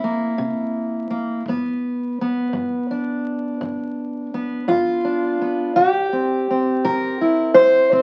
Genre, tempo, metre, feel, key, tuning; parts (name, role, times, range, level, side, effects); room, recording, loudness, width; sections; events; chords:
acoustic country blues, solo or duo; 56 BPM (dotted quarters); 12/8; straight; G mixolydian; A4 = 437 Hz
fingerpicked steel-string acoustic guitar; melody; 0.0-8.0 s; G2 to C5; -20 LUFS; equal
kick drum; drums; 0.4-8.0 s; -44 LUFS; equal
moderate large studio reverb, RT60 0.8 s; very old 78 rpm record, vinyl crackle; -21 LUFS; mono
0.0-8.0 A section
0.0 C7; 1.5 G7; 5.8 C7